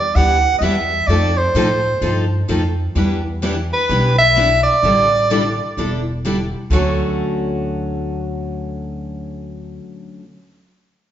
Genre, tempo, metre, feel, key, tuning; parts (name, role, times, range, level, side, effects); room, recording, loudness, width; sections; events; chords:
acoustic string swing (jazz manouche); 128 BPM; 4/4; swing 64% on 8ths; D major; A4 = 440 Hz
breathy soprano saxophone; melody; 0.0-6.2 s; B4 to F#5; -16 LUFS; right 2 dB
upright bass; bass; 0.1-9.8 s; E1 to A2; -21 LUFS; equal
picked steel-string acoustic guitar; accompaniment; 0.2-10.2 s; D3 to A4; -24 LUFS; left 3 dB
picked steel-string acoustic guitar; accompaniment; 0.2-10.2 s; D3 to B4; -25 LUFS; right 2 dB
wet large studio reverb, RT60 1.3 s; band playing live in one room, nothing above 7.6 kHz; -15 LUFS; side -10 dB against mid
0.0-6.7 A section; 6.7-10.5 B section
0.0 Em7; 1.1 F7; 3.0 Em7; 4.8 A7sus4; 6.7 Dmaj7